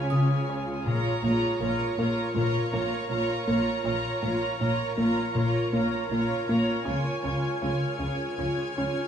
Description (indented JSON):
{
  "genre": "cinematic, suspense film score",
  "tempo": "80 BPM",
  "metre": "4/4",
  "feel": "straight",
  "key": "Bb minor",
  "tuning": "A4 = 440 Hz",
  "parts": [
    { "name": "warm symphonic violin section", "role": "melody", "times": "0.0-9.1 s", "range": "Ab5 to Bb5", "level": "-35 LUFS", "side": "right 1 dB", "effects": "none" },
    { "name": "warm chamber violin section", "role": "second line", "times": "0.0-9.1 s", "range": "Db5", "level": "-34 LUFS", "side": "right 3 dB", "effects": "none" },
    { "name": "rich studio viola section", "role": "accompaniment", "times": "0.0-9.1 s", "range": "F4", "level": "-32 LUFS", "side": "left 2 dB", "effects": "none" },
    { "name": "deep dark ambient pad", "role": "sustained chords", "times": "0.0-9.1 s", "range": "F4 to Db5", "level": "-35 LUFS", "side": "right 3 dB", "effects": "chorus, built-in reverb, tremolo" },
    { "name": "dark chamber cello section", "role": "bass", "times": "0.0-8.9 s", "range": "Bb2 to Db3", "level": "-33 LUFS", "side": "right 2 dB", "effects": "none" },
    { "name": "warm studio double bass section", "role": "bass", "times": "0.0-8.9 s", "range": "Bb1 to Db2", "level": "-36 LUFS", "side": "right 1 dB", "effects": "none" },
    { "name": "vibraphone with hard mallets", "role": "texture", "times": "0.0-6.9 s", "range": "Eb6", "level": "-41 LUFS", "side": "left 5 dB", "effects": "none" },
    { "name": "warm chamber violin section", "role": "texture", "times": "0.0-9.1 s", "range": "Bb5 to Cb7", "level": "-40 LUFS", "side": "equal", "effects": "none" },
    { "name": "plucky analog bass", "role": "riff", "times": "0.1-9.0 s", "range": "Bb2 to Db4", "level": "-29 LUFS", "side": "left 2 dB", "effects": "none" }
  ],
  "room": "wet recital hall reverb, RT60 1.4 s",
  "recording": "small room ambience",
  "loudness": "-24 LUFS",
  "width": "side -8 dB against mid",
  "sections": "0.0-9.1 A section",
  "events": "none",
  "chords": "0.0 Db; 0.9 Bbm; 6.9 Db"
}